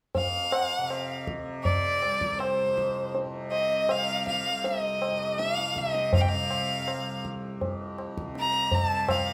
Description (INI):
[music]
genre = indian classical, Hindustani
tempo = 80 BPM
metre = 4/4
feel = straight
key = unclear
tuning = A4 = 445 Hz
[part]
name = tabla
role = percussion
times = 0.1-9.3 s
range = none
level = -32 LUFS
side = equal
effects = none
[part]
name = clear violin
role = melody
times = 0.2-9.3 s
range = C5 to Bb5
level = -29 LUFS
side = equal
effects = none
[part]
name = tanpura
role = drone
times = 0.2-9.3 s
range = C2 to C3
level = -37 LUFS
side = equal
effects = none
[sound]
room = moderate recital hall reverb, RT60 1.4 s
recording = none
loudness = -28 LUFS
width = mono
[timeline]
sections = 0.1-9.3 A section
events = none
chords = none